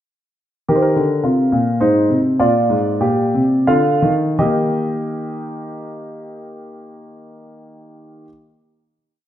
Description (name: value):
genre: classical, baroque-style 3-part fugue for grand piano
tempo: 80-110 BPM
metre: 3/4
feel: straight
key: Eb major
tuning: A4 = 441 Hz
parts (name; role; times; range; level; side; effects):
- warm concert grand piano; solo; 0.7-8.3 s; Ab2 to F5; -15 LUFS; equal; none
room: wet recital hall reverb, RT60 1.5 s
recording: none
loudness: -14 LUFS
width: side -11 dB against mid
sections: 0.7-4.4 exposition; 4.4-8.8 final chord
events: slowing down 0.7-5.5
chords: 0.7 Eb; 1.8 Ab; 2.4 Bb7; 4.4 Eb